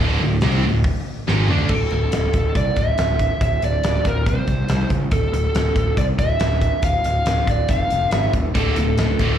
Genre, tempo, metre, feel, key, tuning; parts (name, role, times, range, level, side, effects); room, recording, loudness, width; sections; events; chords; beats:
hard rock; 140 BPM; 4/4; straight; D minor; A4 = 440 Hz
high-gain distorted guitar; riff; 0.0-1.7, 8.6-9.4 s; D2 to D4; -21 LUFS; equal; distortion, slapback echo
fuzz picked electric bass; bass; 0.0-9.3 s; D1 to D2; -20 LUFS; equal; overdrive
big rock drum kit; drums; 0.4-9.3 s; crash cymbal, hi-hat, kick drum, snare drum, toms; -22 LUFS; equal
lead guitar through a small cranked amp; melody; 1.7-9.4 s; A4 to F5; -23 LUFS; right 1 dB; overdrive, slapback echo, analog delay
light reverb; live gig heard through the venue's PA, club reverb; -17 LUFS; side -9 dB against mid
0.0-1.7 A section; 1.7-9.4 B section
drum fill 1.3-1.7
0.0 D5; 4.3 N.C.; 5.1 Dm; 7.7 N.C.; 8.1 G#5; 8.6 D5
0.41 0.84 1.27 | 1.70 2.12 2.55 2.98 | 3.41 3.84 4.26 4.69 | 5.12 5.55 5.98 6.41 | 6.84 7.26 7.69 8.12 | 8.55 8.98